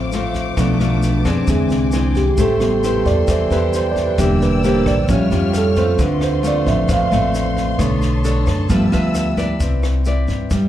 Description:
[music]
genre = bossa nova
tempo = 133 BPM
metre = 4/4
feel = straight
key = A minor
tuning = A4 = 440 Hz
[part]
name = nylon-string guitar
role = accompaniment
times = 0.0-10.7 s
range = A2 to E5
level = -20 LUFS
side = left 3 dB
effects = slapback echo
[part]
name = tine electric piano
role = accompaniment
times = 0.0-9.6 s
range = C3 to F5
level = -19 LUFS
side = right 4 dB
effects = slapback echo
[part]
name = warm symphonic string section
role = sustained chords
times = 0.0-9.6 s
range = A4 to E#6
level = -29 LUFS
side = left 4 dB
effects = none
[part]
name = upright bass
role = bass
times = 0.0-10.7 s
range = E1 to G2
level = -20 LUFS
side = left 1 dB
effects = none
[part]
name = compact cocktail drum kit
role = drums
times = 0.1-10.6 s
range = kick drum, rim click, snare drum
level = -24 LUFS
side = left 1 dB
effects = none
[part]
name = tube shaker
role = percussion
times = 0.1-10.7 s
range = none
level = -38 LUFS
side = left 2 dB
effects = none
[sound]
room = light reverb, small room ambience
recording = live gig heard through the venue's PA, club reverb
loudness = -14 LUFS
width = side -12 dB against mid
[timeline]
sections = 0.0-9.6 A section; 9.6-10.7 B section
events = tine electric piano solo 0.0-9.6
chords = 0.0 Dm7; 0.6 Bm7b5; 1.5 Eaug7; 2.4 Am7; 4.2 Em7b5; 5.1 A7alt; 6.0 Dm7; 7.8 Bm9; 8.7 G13; 9.6 Cmaj9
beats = 0.13 | 0.58 1.03 1.48 1.93 | 2.38 2.83 3.28 3.73 | 4.18 4.64 5.09 5.54 | 5.99 6.44 6.89 7.34 | 7.79 8.24 8.70 9.15 | 9.60 10.05 10.50

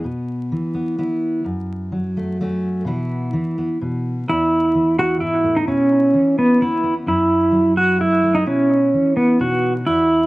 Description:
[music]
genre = folk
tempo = 128 BPM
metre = 3/4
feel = straight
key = unclear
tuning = A4 = 438 Hz
[part]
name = fingerpicked steel-string acoustic guitar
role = accompaniment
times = 0.0-10.3 s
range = E2 to F#4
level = -22 LUFS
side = equal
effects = none
[part]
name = pedal steel guitar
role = melody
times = 4.3-10.3 s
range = B3 to F#4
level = -15 LUFS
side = right 1 dB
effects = cassette tape, analog delay
[sound]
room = moderate booth ambience, RT60 0.2 s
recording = home recording on cassette, vinyl crackle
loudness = -16 LUFS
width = side -19 dB against mid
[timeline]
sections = 0.0-4.3 A section; 4.3-10.3 B section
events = none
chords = 0.0 Bsus4; 1.4 F#m; 2.9 Bsus4; 3.8 N.C.; 4.3 E; 5.7 Bsus4; 7.1 F#m; 8.5 Bsus4; 9.4 B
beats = | 0.04 0.51 0.98 | 1.45 1.92 2.39 | 2.85 3.32 3.79 | 4.26 4.73 5.19 | 5.66 6.13 6.60 | 7.06 7.53 8.00 | 8.46 8.93 9.39 | 9.86

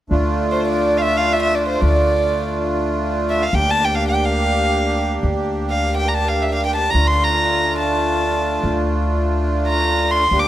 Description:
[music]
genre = klezmer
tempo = free time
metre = none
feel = none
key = D minor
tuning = A4 = 439 Hz
[part]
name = accordion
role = accompaniment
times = 0.1-10.5 s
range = A3 to G4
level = -20 LUFS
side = right 1 dB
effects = light tremolo tuning
[part]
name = upright bass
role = bass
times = 0.1-10.5 s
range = D2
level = -22 LUFS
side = equal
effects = none
[part]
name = dark violin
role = melody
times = 0.5-10.5 s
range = C5 to D6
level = -19 LUFS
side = equal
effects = none
[sound]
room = light reverb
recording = close, detailed microphones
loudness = -16 LUFS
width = side -13 dB against mid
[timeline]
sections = 0.1-10.5 A section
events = none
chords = 0.1 Dm; 3.5 Gm/D; 6.9 Dm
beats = free time

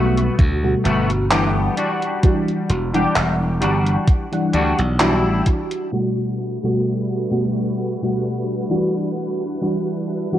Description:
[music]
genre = vaporwave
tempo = 65 BPM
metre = 4/4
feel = swing 54% on 16ths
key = G major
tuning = A4 = 441 Hz
[part]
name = mellow FM electric piano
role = accompaniment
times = 0.0-10.4 s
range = B2 to F#5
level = -20 LUFS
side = equal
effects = ensemble chorus, tape echo
[part]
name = semi-hollow electric guitar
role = riff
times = 0.0-5.5 s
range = G3 to G4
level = -23 LUFS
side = left 2 dB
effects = ensemble chorus, tape echo
[part]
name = glassy slap bass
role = bass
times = 0.0-5.4 s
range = E1 to D2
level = -20 LUFS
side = equal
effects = none
[part]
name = gated 80s digital drum machine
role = drums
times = 0.2-10.4 s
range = handclaps, hi-hat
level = -23 LUFS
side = right 1 dB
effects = gated reverb, overdrive, low-pass filter on hats, low-pass filter on snare, low-pass filter on room
[part]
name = electronic kick drum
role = drums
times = 0.4-5.7 s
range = none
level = -15 LUFS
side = equal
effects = overdrive
[part]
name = soft string machine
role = sustained chords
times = 6.3-10.4 s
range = G3 to B4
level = -27 LUFS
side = right 1 dB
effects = ensemble chorus
[sound]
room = light reverb, digital ambience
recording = cassette tape, low-pass filter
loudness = -17 LUFS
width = side -12 dB against mid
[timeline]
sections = 0.0-5.9 A section; 5.9-10.4 B section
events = filter sweep 5.9-10.4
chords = 0.0 Gmaj9; 1.8 Em9; 5.9 Gmaj9; 9.2 Em9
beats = 0.39 1.31 | 2.23 3.16 4.08 5.00 | 5.92 6.85 7.77 8.70 | 9.62

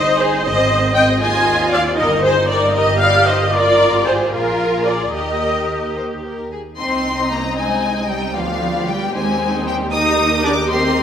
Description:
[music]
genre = quick classical-period movement for string orchestra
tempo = 77 BPM (dotted quarters)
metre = 6/8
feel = rubato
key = Eb major, C minor from 6.8 s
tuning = A4 = 440 Hz
[part]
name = rich chamber violin section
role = melody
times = 0.0-11.0 s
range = G3 to Eb6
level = -23 LUFS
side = left 4 dB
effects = none
[part]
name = rich chamber violin section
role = second line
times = 0.0-11.0 s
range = Eb4 to Eb5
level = -22 LUFS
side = left 2 dB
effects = none
[part]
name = rich symphonic viola section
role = accompaniment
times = 0.0-11.0 s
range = Bb3 to Ab5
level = -18 LUFS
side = equal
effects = none
[part]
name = warm chamber cello section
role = bass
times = 0.0-11.0 s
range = F3 to G4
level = -22 LUFS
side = right 2 dB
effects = none
[part]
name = warm chamber double bass section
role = bass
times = 0.0-11.0 s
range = G1 to Eb2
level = -24 LUFS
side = right 2 dB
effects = none
[sound]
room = wet scoring stage reverb, RT60 1.7 s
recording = none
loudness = -14 LUFS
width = side -8 dB against mid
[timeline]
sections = 0.0-6.8 A section; 6.8-11.0 B section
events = none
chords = 0.4 Ab; 2.0 Eb/G; 3.5 Fm/Ab; 4.3 Bb5; 5.2 Eb; 6.8 Cm; 8.4 G7/D; 9.1 Cm/Eb; 9.9 Eb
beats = | 0.45 1.22 | 1.99 2.76 | 3.54 4.34 | 5.15 5.97 | 6.79 7.58 | 8.37 9.14 | 9.92 10.70

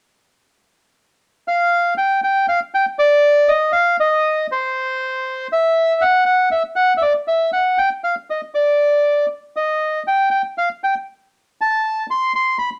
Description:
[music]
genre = tango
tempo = 119 BPM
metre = 4/4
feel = rubato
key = unclear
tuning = A4 = 439 Hz
[part]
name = bandoneon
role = solo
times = 1.5-12.7 s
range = C5 to C6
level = -17 LUFS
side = equal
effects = none
[sound]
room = moderate studio reverb, RT60 0.6 s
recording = none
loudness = -18 LUFS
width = mono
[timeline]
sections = 0.0-1.7 A section; 1.7-12.8 B section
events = none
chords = none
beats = 0.19 0.69 1.20 | 1.71 2.21 2.72 3.23 | 3.73 4.24 4.75 5.25 | 5.75 6.26 6.76 7.26 | 7.77 8.28 8.78 9.29 | 9.80 10.31 10.81 11.32 | 11.82 12.33

